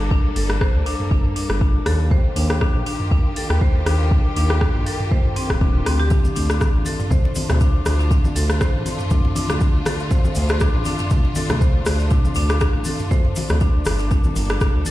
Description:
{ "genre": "afro house", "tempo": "120 BPM", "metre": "4/4", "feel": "swing 55% on 16ths", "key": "D phrygian", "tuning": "A4 = 442 Hz", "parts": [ { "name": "clear studio string section", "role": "sustained chords", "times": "0.0-14.9 s", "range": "D3 to A4", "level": "-30 LUFS", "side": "left 1 dB", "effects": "sidechain pumping" }, { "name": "smooth synth bass", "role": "bass", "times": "0.0-14.8 s", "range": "Eb1 to Eb2", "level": "-21 LUFS", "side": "equal", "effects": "sidechain pumping" }, { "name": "marimba with hard mallets", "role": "arpeggios", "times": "0.1-14.9 s", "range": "C4 to C5", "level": "-28 LUFS", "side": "left 1 dB", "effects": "sidechain pumping, digital delay" }, { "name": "electronic kick drum", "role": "drums", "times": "0.1-14.7 s", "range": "none", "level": "-18 LUFS", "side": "equal", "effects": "overdrive, studio reverb" }, { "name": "afro-pop drum kit", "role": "drums", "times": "0.4-14.9 s", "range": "hi-hat, rim click, toms", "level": "-26 LUFS", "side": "equal", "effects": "overdrive, studio reverb" }, { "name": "congas", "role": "percussion", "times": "6.1-14.9 s", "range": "none", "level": "-28 LUFS", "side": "left 2 dB", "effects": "none" }, { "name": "maracas", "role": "percussion", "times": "6.1-14.9 s", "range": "none", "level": "-37 LUFS", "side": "left 3 dB", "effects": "none" } ], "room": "small room ambience", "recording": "played on a big sound system in a bare room, stone room reverb", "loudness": "-16 LUFS", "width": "side -16 dB against mid", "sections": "0.0-14.9 A section", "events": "none", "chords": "0.0 Gm; 2.1 Ebmaj7; 6.1 Dm; 14.1 Gm", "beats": "| 0.11 0.61 1.11 1.61 | 2.11 2.61 3.11 3.61 | 4.11 4.61 5.11 5.61 | 6.11 6.61 7.11 7.61 | 8.11 8.61 9.11 9.61 | 10.11 10.61 11.11 11.61 | 12.11 12.61 13.11 13.61 | 14.11 14.61" }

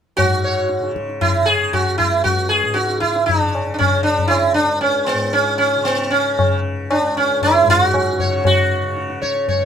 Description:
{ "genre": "indian classical, Hindustani", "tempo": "116 BPM", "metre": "4/4", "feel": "straight", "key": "C# raga bhairavi", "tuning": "A4 = 440 Hz", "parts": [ { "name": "sitar", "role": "melody", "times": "0.2-9.7 s", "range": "B3 to C#5", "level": "-16 LUFS", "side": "right 1 dB", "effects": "none" }, { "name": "tanpura", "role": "drone", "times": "0.2-9.7 s", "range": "C#2 to C#3", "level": "-27 LUFS", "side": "left 2 dB", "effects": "none" }, { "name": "tabla", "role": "percussion", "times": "0.2-9.7 s", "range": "none", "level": "-21 LUFS", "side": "left 2 dB", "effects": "none" } ], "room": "light reverb", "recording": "minimal, uncompressed stereo recording", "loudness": "-15 LUFS", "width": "side -8 dB against mid", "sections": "0.2-9.7 A section", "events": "none", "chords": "none", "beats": "| 0.18 0.70 1.21 1.73 | 2.25 2.77 3.28 3.80 | 4.31 4.83 5.35 5.86 | 6.38 6.89 7.41 7.92 | 8.44 8.95 9.47" }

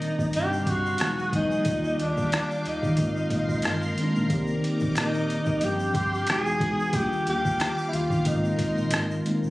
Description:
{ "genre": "R&B, neo-soul", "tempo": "91 BPM", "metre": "4/4", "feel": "swing 55% on 16ths", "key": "unclear", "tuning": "A4 = 439 Hz", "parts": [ { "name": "breathy tenor saxophone", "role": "melody", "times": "0.0-9.2 s", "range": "D4 to G#4", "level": "-28 LUFS", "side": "equal", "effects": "none" }, { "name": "mellow tine electric piano", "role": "accompaniment", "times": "0.0-9.5 s", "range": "C3 to D5", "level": "-28 LUFS", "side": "left 1 dB", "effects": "medium stereo tremolo" }, { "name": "string machine, full ensemble", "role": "sustained chords", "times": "0.0-9.5 s", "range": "G3 to D#6", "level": "-34 LUFS", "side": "equal", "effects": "ensemble chorus" }, { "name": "vintage muted fingered electric bass", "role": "bass", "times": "0.0-9.5 s", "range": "E1 to Eb3", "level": "-32 LUFS", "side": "equal", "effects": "none" }, { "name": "boom bap sampler-style drum kit", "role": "drums", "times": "0.0-9.4 s", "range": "hi-hat, kick drum, rim click", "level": "-29 LUFS", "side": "equal", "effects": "none" }, { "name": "egg shaker and finger snaps", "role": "percussion", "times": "0.0-9.5 s", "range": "none", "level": "-44 LUFS", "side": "left 1 dB", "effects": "none" } ], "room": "light reverb", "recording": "recorded on a phone in the room, studio ambience, compression", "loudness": "-23 LUFS", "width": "side -18 dB against mid", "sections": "0.0-9.5 A section", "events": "none", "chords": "0.3 G7sus4; 1.0 Emaj9; 1.7 Ebmaj9; 3.0 Ab69; 4.3 Cm9; 5.6 G7sus4; 6.3 Emaj9; 6.9 Ebmaj9; 8.3 Ab69", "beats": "0.34 1.00 | 1.66 2.32 2.98 3.64 | 4.30 4.96 5.62 6.28 | 6.94 7.59 8.25 8.91" }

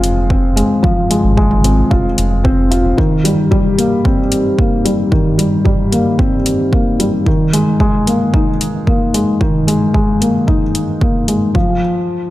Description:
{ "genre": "piano and strings electronica", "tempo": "112 BPM", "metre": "4/4", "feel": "straight", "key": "unclear", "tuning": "A4 = 441 Hz", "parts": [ { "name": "felt-muted upright piano", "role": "riff", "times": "0.0-12.3 s", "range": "Eb3 to F4", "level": "-13 LUFS", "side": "left 1 dB", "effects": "tape echo" }, { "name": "round analog bass", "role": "bass", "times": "0.0-2.9 s", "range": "F1 to Ab1", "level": "-15 LUFS", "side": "equal", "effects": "sidechain pumping" }, { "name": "deep house drum kit", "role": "drums", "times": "0.0-11.4 s", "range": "hi-hat, toms", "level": "-21 LUFS", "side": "left 1 dB", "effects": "overdrive" }, { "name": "electronic kick drum", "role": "drums", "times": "0.3-11.7 s", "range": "none", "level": "-16 LUFS", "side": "equal", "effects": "overdrive" } ], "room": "light reverb, digital ambience", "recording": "none", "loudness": "-11 LUFS", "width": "side -16 dB against mid", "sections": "0.0-11.5 A section", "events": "none", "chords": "0.0 Fm; 3.0 Cm7; 7.3 Absus2; 11.5 N.C.", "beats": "0.30 | 0.83 1.37 1.91 2.44 | 2.98 3.51 4.05 4.58 | 5.12 5.66 6.19 6.73 | 7.26 7.80 8.34 8.87 | 9.41 9.94 10.48 11.01 | 11.55 12.09" }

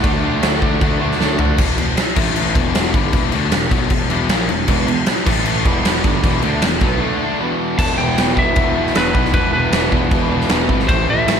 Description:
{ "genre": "hard rock", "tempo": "155 BPM", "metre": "4/4", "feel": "straight", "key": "E minor", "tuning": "A4 = 440 Hz", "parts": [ { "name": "lightly driven lead guitar", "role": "melody", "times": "0.0-1.1, 7.8-11.4 s", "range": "B4 to A5", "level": "-21 LUFS", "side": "left 1 dB", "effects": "slapback echo" }, { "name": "cranked stack guitar", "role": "riff", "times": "0.0-11.4 s", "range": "E2 to D4", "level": "-22 LUFS", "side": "left 10 dB", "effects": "overdrive, slapback echo" }, { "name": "overdriven semi-hollow guitar", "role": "riff", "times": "0.0-1.6, 4.7-11.4 s", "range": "E2 to D4", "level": "-23 LUFS", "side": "right 10 dB", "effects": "slapback echo" }, { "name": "fuzz picked electric bass", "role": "bass", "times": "0.0-11.4 s", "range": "E1 to D2", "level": "-22 LUFS", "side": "equal", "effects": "overdrive" }, { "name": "huge arena drum kit", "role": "drums", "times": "0.0-11.4 s", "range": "crash cymbal, kick drum, snare drum, toms", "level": "-17 LUFS", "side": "equal", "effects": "none" } ], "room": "light reverb", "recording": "none", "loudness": "-14 LUFS", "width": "side -7 dB against mid", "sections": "0.0-1.6 A section; 1.6-7.8 B section; 7.8-11.4 A section", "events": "drum fill 1.2-1.6; break 7.0-7.8", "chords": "0.0 D; 1.6 E5; 2.2 A5; 2.6 Em; 5.3 A5; 5.7 Em; 7.0 D5; 7.4 E5; 10.9 Am", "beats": "| 0.04 0.43 0.81 1.20 | 1.59 1.98 2.36 2.75 | 3.14 3.53 3.91 4.30 | 4.69 5.08 5.46 5.85 | 6.24 6.63 7.01 7.40 | 7.79 8.18 8.56 8.95 | 9.34 9.72 10.11 10.49 | 10.88 11.27" }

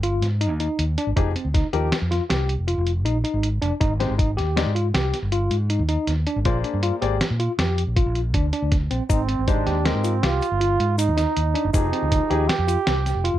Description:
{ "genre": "progressive instrumental, band music in an uneven meter", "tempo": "159 BPM", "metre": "7/4", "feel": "straight", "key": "unclear", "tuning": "A4 = 438 Hz", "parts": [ { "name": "tine electric piano", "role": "arpeggios", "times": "0.0-13.4 s", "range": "C4 to G4", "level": "-26 LUFS", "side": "left 1 dB", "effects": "medium stereo tremolo" }, { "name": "fingered electric bass", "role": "bass", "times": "0.0-13.4 s", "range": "F1 to Bb2", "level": "-23 LUFS", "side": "equal", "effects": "none" }, { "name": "lo-fi sampler-style drum kit", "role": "drums", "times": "0.0-13.3 s", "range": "hi-hat, kick drum, snare drum", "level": "-24 LUFS", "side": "equal", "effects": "none" }, { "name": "warm baby grand piano", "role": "accompaniment", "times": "1.2-12.4 s", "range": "F3 to D5", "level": "-27 LUFS", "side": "left 10 dB", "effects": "none" }, { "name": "breathy flugelhorn", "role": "second line", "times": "9.1-13.4 s", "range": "C4 to G4", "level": "-25 LUFS", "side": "right 8 dB", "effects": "none" }, { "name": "egg shaker", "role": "percussion", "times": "9.1-13.2 s", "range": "none", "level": "-38 LUFS", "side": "left 14 dB", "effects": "none" } ], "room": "light reverb", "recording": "none", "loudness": "-20 LUFS", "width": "side -13 dB against mid", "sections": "0.0-13.4 A section", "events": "none", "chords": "0.0 Abmaj7(no3); 1.2 Fm9; 3.8 Abmaj7; 6.5 Bb9; 9.1 Abmaj7; 11.7 Fm9", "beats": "0.04 0.41 0.79 | 1.17 1.55 1.92 2.30 2.68 3.06 3.44 | 3.81 4.19 4.57 4.95 5.32 5.70 6.08 | 6.46 6.83 7.21 7.59 7.96 8.34 8.72 | 9.10 9.47 9.85 10.23 10.61 10.98 11.36 | 11.74 12.12 12.49 12.87 13.25" }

